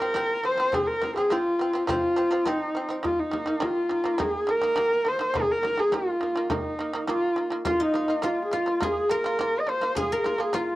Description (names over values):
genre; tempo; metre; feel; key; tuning
mongolian traditional, Mongolian folk; 104 BPM; 4/4; straight; unclear; A4 = 438 Hz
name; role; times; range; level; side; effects
warm horsehead fiddle; melody; 0.0-10.8 s; Eb4 to Eb5; -24 LUFS; equal; cassette tape, plate reverb
shamisen; arpeggios; 0.0-10.8 s; Eb3 to F4; -31 LUFS; right 2 dB; cassette tape, plate reverb
frame drum; percussion; 0.0-10.7 s; none; -35 LUFS; left 3 dB; none
guzheng; second line; 7.7-10.8 s; Eb4 to Bb4; -31 LUFS; left 2 dB; cassette tape, plate reverb
room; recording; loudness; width
wet booth ambience, RT60 0.2 s; home recording on cassette; -23 LUFS; side -16 dB against mid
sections
0.0-10.8 A section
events
none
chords
0.0 F5; 3.0 Eb5; 7.7 Bb5